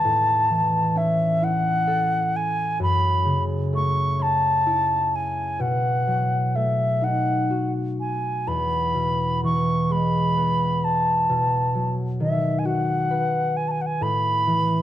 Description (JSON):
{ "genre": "celtic folk, Celtic slow air", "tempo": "43 BPM (dotted quarters)", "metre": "6/8", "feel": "rubato", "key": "unclear", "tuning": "A4 = 440 Hz", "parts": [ { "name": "reedy baroque flute", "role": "melody", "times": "0.0-14.8 s", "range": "E5 to C#6", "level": "-22 LUFS", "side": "equal", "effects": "none" }, { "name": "concert harp", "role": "accompaniment", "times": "0.0-14.8 s", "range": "E2 to B4", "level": "-24 LUFS", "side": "equal", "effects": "none" } ], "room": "light reverb", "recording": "close, detailed microphones", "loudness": "-20 LUFS", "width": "side -12 dB against mid", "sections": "0.0-14.8 A section", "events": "none", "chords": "0.1 A; 2.8 F#m7; 5.6 B7; 8.5 E; 11.3 B; 14.0 A5" }